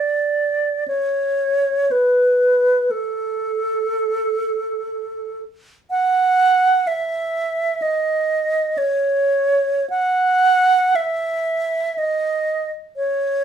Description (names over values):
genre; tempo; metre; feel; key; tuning
classical, free, expressive piece for unaccompanied alto flute; free time; none; none; F# dorian; A4 = 440 Hz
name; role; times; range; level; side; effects
bright alto flute; solo; 0.0-13.4 s; A4 to F#5; -17 LUFS; right 2 dB; none
room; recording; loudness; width
light reverb; none; -17 LUFS; side -8 dB against mid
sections
0.0-13.4 A section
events
none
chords
none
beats
free time